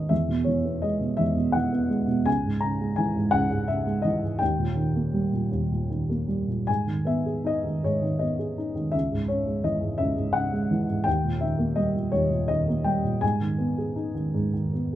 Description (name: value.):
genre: classical, lyrical solo piano.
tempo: 74-87 BPM.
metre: 3/4.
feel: rubato.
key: G# minor.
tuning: A4 = 440 Hz.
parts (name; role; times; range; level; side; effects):
dark upright piano; solo; 0.0-15.0 s; C#2 to A#5; -23 LUFS; equal; none.
room: light reverb.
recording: nothing above 11.0 kHz.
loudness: -23 LUFS.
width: side -12 dB against mid.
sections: 0.0-15.0 A section.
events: none.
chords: 0.1 E; 2.3 C#m; 4.4 D#; 6.7 G#m; 8.9 C#m; 11.1 D#; 13.2 G#m.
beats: | 0.11 0.83 1.55 | 2.27 2.98 3.69 | 4.41 5.15 5.92 | 6.69 7.46 8.21 | 8.94 9.65 10.35 | 11.07 11.78 12.49 | 13.22 13.96 14.73.